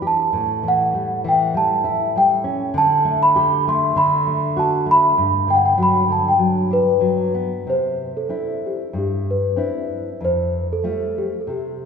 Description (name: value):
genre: fado-style ballad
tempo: 97 BPM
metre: 4/4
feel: uneven beats, rubato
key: G major, C major from 7.7 s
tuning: A4 = 441 Hz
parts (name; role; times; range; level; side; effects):
- celesta; melody; 0.0-11.9 s; G4 to C6; -18 LUFS; equal; none
- nylon-string guitar; accompaniment; 0.0-11.9 s; F2 to G4; -23 LUFS; left 1 dB; none
room: wet concert hall reverb, RT60 2.5 s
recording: heard from further back in the room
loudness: -16 LUFS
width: side -6 dB against mid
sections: 0.0-7.7 A section; 7.7-11.9 B section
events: none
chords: 0.3 A7; 2.7 Dsus4; 4.0 D; 5.2 Gmaj7; 7.7 Cadd9; 10.2 Fadd9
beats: | 0.33 0.94 1.54 2.14 | 2.74 3.34 3.95 4.56 | 5.16 5.77 6.38 7.02 | 7.66 8.30 8.94 9.57 | 10.20 10.83 11.45